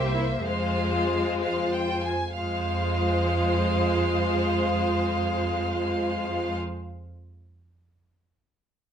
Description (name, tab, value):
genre	quick classical-period movement for string orchestra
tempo	64 BPM (dotted quarters)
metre	6/8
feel	straight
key	F minor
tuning	A4 = 440 Hz
part	rich chamber violin section	melody	0.0-6.6 s	E5 to Ab5	-31 LUFS	left 2 dB	none
part	rich studio violin section	second line	0.0-6.6 s	C5	-32 LUFS	left 2 dB	none
part	rich chamber viola section	accompaniment	0.0-6.6 s	Ab3 to Bb3	-31 LUFS	left 2 dB	none
part	rich chamber double bass section	bass	0.0-6.6 s	C2 to F2	-30 LUFS	right 2 dB	none
part	warm chamber cello section	bass	0.0-6.6 s	E4 to G4	-29 LUFS	right 2 dB	none
room	light reverb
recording	none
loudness	-23 LUFS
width	side -8 dB against mid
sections	0.0-2.4 A section; 2.4-6.1 B section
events	slowing down 0.0-2.4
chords	0.5 Fm